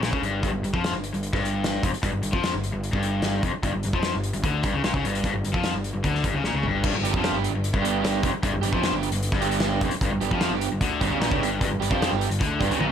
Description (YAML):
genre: indie rock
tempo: 150 BPM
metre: 4/4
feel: straight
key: G lydian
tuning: A4 = 441 Hz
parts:
  - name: cranked stack guitar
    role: riff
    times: 0.0-12.9 s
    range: F2 to F3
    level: -26 LUFS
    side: left 3 dB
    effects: overdrive
  - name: fuzz picked electric bass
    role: bass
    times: 0.0-12.9 s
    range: F1 to F2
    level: -30 LUFS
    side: equal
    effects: overdrive
  - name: loose indie drum kit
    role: drums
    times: 0.0-12.9 s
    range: crash cymbal, hi-hat, kick drum, snare drum, toms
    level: -27 LUFS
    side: equal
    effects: none
  - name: crunchy overdriven guitar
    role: riff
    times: 7.0-12.9 s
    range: B3 to G4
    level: -28 LUFS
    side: right 17 dB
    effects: lush chorus
room: light reverb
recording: none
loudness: -22 LUFS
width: side -8 dB against mid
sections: 0.0-6.8 A section; 6.8-12.9 B section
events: drum fill 6.4-6.8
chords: 0.0 G5; 6.8 G